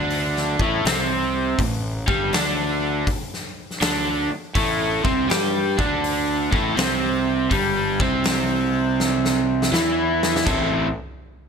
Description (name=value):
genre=blues rock power trio and southern rock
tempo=81 BPM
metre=4/4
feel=swing 66% on 8ths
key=A minor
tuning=A4 = 440 Hz
part: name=overdriven electric guitar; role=riff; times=0.0-10.9 s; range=G2 to G4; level=-20 LUFS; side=right 1 dB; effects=none
part: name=fuzz fingered electric bass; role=bass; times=0.0-10.9 s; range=G1 to G2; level=-28 LUFS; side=equal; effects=overdrive
part: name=huge arena drum kit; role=drums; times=0.1-10.7 s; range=crash cymbal, hi-hat, kick drum, snare drum, toms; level=-25 LUFS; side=left 1 dB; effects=none
room=light reverb, small room ambience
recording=none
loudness=-19 LUFS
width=side -6 dB against mid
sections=0.0-10.5 A section; 10.5-11.5 B section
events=drum fill 9.0-10.5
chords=0.0 Am